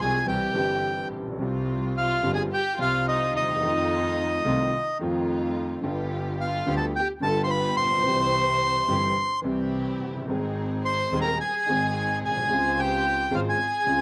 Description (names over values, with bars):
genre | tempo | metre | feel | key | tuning
tango | 108 BPM | 4/4 | rubato | unclear | A4 = 439 Hz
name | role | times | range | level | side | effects
bandoneon | melody | 0.0-14.0 s | Eb5 to C6 | -27 LUFS | equal | none
dark studio violin section | second line | 0.0-14.0 s | Eb4 to C5 | -34 LUFS | equal | slapback echo
warm concert grand piano | accompaniment | 0.0-14.0 s | Eb1 to Ab4 | -31 LUFS | equal | none
clear double bass | bass | 0.0-14.0 s | Gb1 to F2 | -35 LUFS | equal | none
dark chamber string section | stabs | 1.4-14.0 s | G3 to C5 | -39 LUFS | equal | none
room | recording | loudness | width
little or no reverb | recorded outdoors, with no room sound | -25 LUFS | mono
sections
0.0-14.0 A section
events
none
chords
0.3 C; 1.4 Csus4; 3.6 F7; 5.8 G7; 8.1 C; 10.3 Ab; 12.5 Dbmaj7